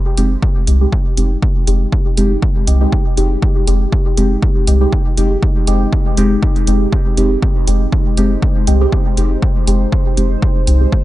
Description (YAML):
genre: dub techno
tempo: 120 BPM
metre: 4/4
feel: swing 55% on 16ths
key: F minor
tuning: A4 = 440 Hz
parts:
  - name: deep dark ambient pad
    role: sustained chords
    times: 0.3-11.0 s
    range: Ab3 to C5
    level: -23 LUFS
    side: left 3 dB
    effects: chorus, built-in reverb, sidechain pumping
  - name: deep mellow chord stab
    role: stabs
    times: 0.2-10.9 s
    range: Ab3 to G4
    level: -19 LUFS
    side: right 1 dB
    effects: chorus, phaser, sidechain pumping, dub echo
  - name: soft dub sub bass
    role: bass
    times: 0.2-10.9 s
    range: F1 to C2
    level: -14 LUFS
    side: equal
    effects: sidechain pumping
  - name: electronic hi-hat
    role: drums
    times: 0.2-10.8 s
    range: none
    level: -24 LUFS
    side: right 1 dB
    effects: overdrive
  - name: electronic kick drum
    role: drums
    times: 0.4-11.0 s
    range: none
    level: -15 LUFS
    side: equal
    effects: overdrive
room: digital ambience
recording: nothing above 10.5 kHz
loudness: -12 LUFS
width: side -16 dB against mid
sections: 0.0-11.0 A section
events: filter sweep on synth stab 0.0-11.0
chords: 0.0 Fm9